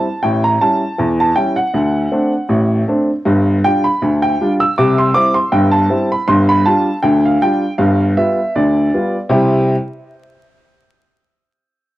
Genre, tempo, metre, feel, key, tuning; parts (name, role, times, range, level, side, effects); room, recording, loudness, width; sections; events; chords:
ragtime piano; 79 BPM; 2/4; swing 54% on 16ths; C major; A4 = 441 Hz
clear upright piano; solo; 0.0-9.7 s; G1 to E6; -12 LUFS; equal; cassette tape
light reverb, small room ambience; home recording on cassette, vinyl crackle; -12 LUFS; side -15 dB against mid
0.0-9.3 A section; 9.3-10.8 B section
0.2 A7; 1.7 D7; 3.2 G5; 4.8 C; 6.3 G5; 7.8 G7; 9.3 C